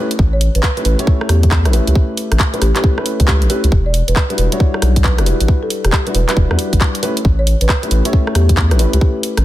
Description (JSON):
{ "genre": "UK garage, two-step garage", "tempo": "136 BPM", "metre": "4/4", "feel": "swing 64% on 16ths", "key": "unclear", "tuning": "A4 = 440 Hz", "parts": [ { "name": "dark baby grand piano", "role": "stabs", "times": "0.0-9.4 s", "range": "G3 to C#5", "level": "-21 LUFS", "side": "left 1 dB", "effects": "none" }, { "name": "garage drum kit", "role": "drums", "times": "0.1-9.4 s", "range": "handclaps, hi-hat, rim click", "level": "-20 LUFS", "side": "equal", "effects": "studio reverb, soft clipping on snare" }, { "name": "saturated sub bass", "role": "bass", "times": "0.2-9.4 s", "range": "E1 to E2", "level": "-14 LUFS", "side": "equal", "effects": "none" }, { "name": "electronic kick drum", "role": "drums", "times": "0.2-9.1 s", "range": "none", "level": "-14 LUFS", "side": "equal", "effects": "studio reverb" }, { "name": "folk marimba with soft mallets", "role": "melody", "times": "0.3-9.1 s", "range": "G4 to D5", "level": "-24 LUFS", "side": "right 1 dB", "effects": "ping-pong delay" } ], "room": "digital ambience", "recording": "dense, heavily limited modern master", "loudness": "-12 LUFS", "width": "side -14 dB against mid", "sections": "0.0-9.4 A section", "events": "none", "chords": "0.0 A7; 3.7 Em7; 7.0 A7" }